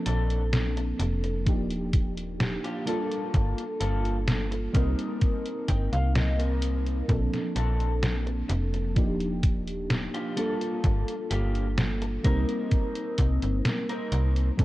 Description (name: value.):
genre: vaporwave.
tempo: 64 BPM.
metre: 4/4.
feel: straight.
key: C dorian.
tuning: A4 = 442 Hz.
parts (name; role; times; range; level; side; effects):
mellow FM electric piano; accompaniment; 0.0-14.6 s; F3 to Bb4; -31 LUFS; equal; ensemble chorus, tape echo.
electric guitar through a small old amp; riff; 0.1-14.5 s; Bb3 to G5; -36 LUFS; left 2 dB; analog chorus, tape echo.
slap-like FM bass; bass; 0.1-14.6 s; Eb1 to C2; -28 LUFS; equal; none.
detuned 8-bit digital drum machine; drums; 0.1-14.6 s; hi-hat, snare drum; -30 LUFS; equal; none.
electronic kick drum; drums; 1.5-14.6 s; none; -24 LUFS; equal; none.
room: digital ambience.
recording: cassette tape.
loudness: -24 LUFS.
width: side -17 dB against mid.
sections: 0.0-14.6 A section.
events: clean electric guitar fill 5.2-7.1.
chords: 0.0 Bbmaj9; 1.5 Ebmaj9; 2.9 Gm9; 4.7 Cm7; 7.1 Bbmaj9; 9.0 Ebmaj9; 10.4 Gm9; 12.2 Cm7.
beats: 0.53 1.47 2.40 | 3.34 4.28 5.22 6.15 | 7.09 8.03 8.97 9.90 | 10.84 11.78 12.72 13.65 | 14.59.